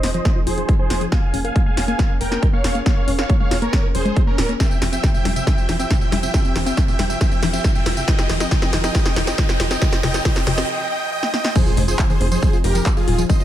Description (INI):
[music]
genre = uplifting trance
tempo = 138 BPM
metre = 4/4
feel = straight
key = F minor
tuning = A4 = 442 Hz
[part]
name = big supersaw lead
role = melody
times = 0.0-13.4 s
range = Db4 to Ab5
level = -24 LUFS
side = right 1 dB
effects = sidechain pumping, low-pass filter, digital delay
[part]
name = lush unison pad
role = sustained chords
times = 0.0-13.4 s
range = F3 to Bb4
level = -30 LUFS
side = right 1 dB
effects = chorus, sidechain pumping
[part]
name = wide unison pluck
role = arpeggios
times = 0.0-13.4 s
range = Bb2 to Bb4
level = -26 LUFS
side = left 4 dB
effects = auto-pan, sidechain pumping, digital delay
[part]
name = tight sequencer bass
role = bass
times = 0.0-13.2 s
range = Eb1 to F1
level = -23 LUFS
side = equal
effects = sidechain pumping
[part]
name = punchy analog drum machine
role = drums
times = 0.0-13.4 s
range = crash cymbal, handclaps, hi-hat, snare drum, tambourine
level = -24 LUFS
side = equal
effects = none
[part]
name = electronic kick drum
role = drums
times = 0.3-13.4 s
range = none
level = -18 LUFS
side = equal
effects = none
[part]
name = riser, noise sweep and impact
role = sound effects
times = 5.7-13.3 s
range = none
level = -32 LUFS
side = equal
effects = none
[sound]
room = light reverb, digital ambience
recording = none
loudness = -16 LUFS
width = side -12 dB against mid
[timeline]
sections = 0.0-11.6 A section; 11.6-13.4 B section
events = build-up 0.0-11.6; drum fill 0.0-10.7, 11.2-11.6; filter sweep on supersaw synth 0.0-11.6; filter sweep on synth arpeggio sound 0.0-11.6; riser 5.7-10.7; noise sweep 9.8-11.6; break 10.7-11.6; drop 11.6-13.4; impact 11.6-13.3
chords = 0.0 Fm7; 1.1 Bbm7/F; 4.6 C/F; 8.1 Ebsus4/F; 11.6 Fm7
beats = 0.25 0.69 | 1.12 1.56 1.99 2.42 | 2.86 3.29 3.73 4.17 | 4.60 5.03 5.47 5.90 | 6.34 6.77 7.21 7.64 | 8.08 8.51 8.95 9.38 | 9.82 10.25 10.69 11.12 | 11.56 11.99 12.43 12.86 | 13.29